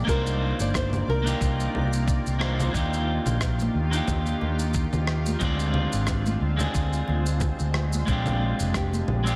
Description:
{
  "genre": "sunset chillout",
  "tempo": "90 BPM",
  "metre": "4/4",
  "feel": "swing 55% on 16ths",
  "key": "C minor",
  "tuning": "A4 = 440 Hz",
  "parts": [
    { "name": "electric guitar at the edge of break-up", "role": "accompaniment", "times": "0.0-9.4 s", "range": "Ab3 to D5", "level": "-32 LUFS", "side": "equal", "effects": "delay" },
    { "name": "shimmering ambient pad", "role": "sustained chords", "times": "0.0-9.4 s", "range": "C3 to D5", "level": "-37 LUFS", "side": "equal", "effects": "chorus, built-in reverb" },
    { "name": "flamenco guitar", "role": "melody", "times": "0.1-2.4, 8.8-9.4 s", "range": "G4 to D5", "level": "-34 LUFS", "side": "equal", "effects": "digital delay" },
    { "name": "mellow fretless electric bass", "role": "bass", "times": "0.1-9.3 s", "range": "F1 to Eb2", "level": "-28 LUFS", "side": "equal", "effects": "subtle chorus" },
    { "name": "electronic congas, shaker and rim click", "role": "drums", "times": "0.1-9.4 s", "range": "none", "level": "-35 LUFS", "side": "equal", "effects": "none" },
    { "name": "electronic kick drum", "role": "drums", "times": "0.1-8.9 s", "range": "none", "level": "-31 LUFS", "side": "equal", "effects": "none" },
    { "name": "congas", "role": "percussion", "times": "3.6-9.1 s", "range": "none", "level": "-36 LUFS", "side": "equal", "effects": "none" }
  ],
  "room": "light reverb, digital ambience",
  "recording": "none",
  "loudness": "-25 LUFS",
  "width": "mono",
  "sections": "0.0-9.4 A section",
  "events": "none",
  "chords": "0.1 Cm11; 2.7 Ebmaj9; 5.4 Dm7b5; 8.1 Bb13",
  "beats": "| 0.08 0.74 1.41 2.08 | 2.74 3.41 4.08 4.74 | 5.41 6.08 6.74 7.41 | 8.08 8.74"
}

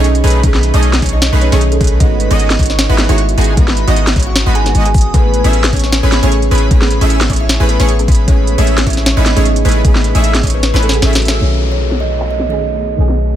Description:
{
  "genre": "future bass",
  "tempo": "153 BPM",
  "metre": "4/4",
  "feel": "swing 55% on 16ths, half-time",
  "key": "A lydian",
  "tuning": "A4 = 440 Hz",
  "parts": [
    { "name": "kalimba", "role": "melody", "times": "0.0-12.7 s", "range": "F#3 to G#5", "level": "-20 LUFS", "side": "right 2 dB", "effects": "sidechain pumping, ping-pong delay" },
    { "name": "soft round pluck", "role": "accompaniment", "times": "0.0-13.4 s", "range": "C#3 to G#4", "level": "-22 LUFS", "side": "right 4 dB", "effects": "ensemble chorus, sidechain pumping" },
    { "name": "airy dreamy lead", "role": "arpeggios", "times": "0.0-11.4 s", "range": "G#4 to E5", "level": "-24 LUFS", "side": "equal", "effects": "chorus, sidechain pumping, digital delay" },
    { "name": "supersaw stab", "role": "riff", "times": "0.0-11.4 s", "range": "G#3 to E5", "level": "-19 LUFS", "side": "right 1 dB", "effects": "sidechain pumping" },
    { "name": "warm 808-style bass", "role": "bass", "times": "0.0-13.4 s", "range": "G#1 to B1", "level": "-13 LUFS", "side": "equal", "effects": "sidechain pumping" },
    { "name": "trap drum kit", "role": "drums", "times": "0.0-13.2 s", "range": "crash cymbal, handclaps, hi-hat, snare drum", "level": "-17 LUFS", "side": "equal", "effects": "low-pass filter on hats, low-pass filter on snare, low-pass filter on cymbals" },
    { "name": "electronic kick drum", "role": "drums", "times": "0.4-10.5 s", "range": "none", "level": "-12 LUFS", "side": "equal", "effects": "overdrive" },
    { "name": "airy breathy pad", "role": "sustained chords", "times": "11.9-13.4 s", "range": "A3 to D#4", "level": "-29 LUFS", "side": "right 1 dB", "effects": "chorus, phaser, sidechain pumping" },
    { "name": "downlifter", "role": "sound effects", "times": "11.4-13.4 s", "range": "none", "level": "-27 LUFS", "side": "equal", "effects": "none" }
  ],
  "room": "digital ambience",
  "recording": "none",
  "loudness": "-9 LUFS",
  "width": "side -11 dB against mid",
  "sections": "0.0-11.4 A section; 11.4-13.4 B section",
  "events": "drop 0.0-11.4; kick drops out 10.6-11.4; drum fill 10.6-11.4; band accent 11.3; filter sweep on analog synth pad 11.4-13.4",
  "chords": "0.0 B13; 2.0 G#m7; 5.1 Amaj9; 11.4 B13",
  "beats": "0.04 | 0.43 0.83 1.22 1.61 | 2.00 2.40 2.79 3.18 | 3.57 3.96 4.36 4.75 | 5.14 5.53 5.92 6.32 | 6.71 7.10 7.49 7.89 | 8.28 8.67 9.06 9.46 | 9.85 10.24 10.63 11.02 | 11.41 11.81 12.20 12.59 | 12.98"
}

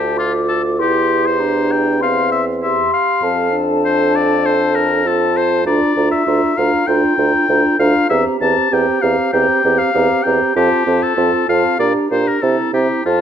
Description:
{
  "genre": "quick classical-period movement for wind quintet",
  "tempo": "98 BPM",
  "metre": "4/4",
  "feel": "straight",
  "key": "unclear",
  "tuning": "A4 = 440 Hz",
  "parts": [
    { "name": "mellow hollow silver concert flute", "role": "melody", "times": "0.0-13.2 s", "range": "A5 to D6", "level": "-22 LUFS", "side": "left 5 dB", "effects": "none" },
    { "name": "clear oboe", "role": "second line", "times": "0.0-13.2 s", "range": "F4 to A5", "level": "-18 LUFS", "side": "left 4 dB", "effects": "none" },
    { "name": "mellow French horn", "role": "accompaniment", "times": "0.0-13.2 s", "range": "C4 to F4", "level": "-21 LUFS", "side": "equal", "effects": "none" },
    { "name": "mellow clarinet", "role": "accompaniment", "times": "0.0-13.2 s", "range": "E4 to A4", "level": "-21 LUFS", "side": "right 9 dB", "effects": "none" },
    { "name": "mellow bassoon", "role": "bass", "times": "0.0-13.2 s", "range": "D2 to C3", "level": "-18 LUFS", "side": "right 2 dB", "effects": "none" }
  ],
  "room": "moderate recital hall reverb, RT60 1.4 s",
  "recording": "none",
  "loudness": "-13 LUFS",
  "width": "side -8 dB against mid",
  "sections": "0.0-13.2 A section",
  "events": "none",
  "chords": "0.0 Dm; 0.8 C/E; 3.2 F; 5.7 Bb/D; 8.1 C7/E; 10.6 F; 11.8 Gm/Bb; 12.4 C7",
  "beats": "0.18 | 0.79 1.40 2.01 2.62 | 3.23 3.84 4.44 5.05 | 5.66 6.27 6.88 7.49 | 8.11 8.72 9.33 9.94 | 10.56 11.17 11.79 12.42 | 13.06"
}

